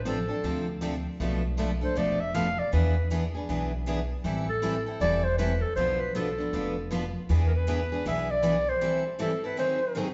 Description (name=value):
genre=acoustic string swing (jazz manouche)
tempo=158 BPM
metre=4/4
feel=swing 62% on 8ths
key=A minor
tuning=A4 = 440 Hz
part: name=upright bass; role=bass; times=0.0-8.7 s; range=E1 to E2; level=-32 LUFS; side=equal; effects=none
part: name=growling clarinet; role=melody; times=0.1-10.1 s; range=A4 to F5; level=-31 LUFS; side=equal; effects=none
part: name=picked steel-string acoustic guitar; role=accompaniment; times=0.1-10.1 s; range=B2 to A4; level=-34 LUFS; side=equal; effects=none
part: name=picked steel-string acoustic guitar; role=accompaniment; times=0.1-10.1 s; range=B2 to B4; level=-38 LUFS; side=equal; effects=none
room=wet large studio reverb, RT60 1.4 s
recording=band playing live in one room, nothing above 7.8 kHz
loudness=-28 LUFS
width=mono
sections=0.0-10.1 A section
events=break 8.8-10.1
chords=0.0 Dm7/A; 1.2 Bm7b5; 2.7 E7; 4.3 Am7; 5.8 Bdim; 7.3 E7; 8.8 Am7; 9.6 G#7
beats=0.06 0.44 0.82 | 1.21 1.59 1.97 2.35 | 2.73 3.11 3.49 3.87 | 4.25 4.63 5.01 5.39 | 5.78 6.16 6.54 6.92 | 7.30 7.68 8.06 8.44 | 8.81 9.20 9.57 9.95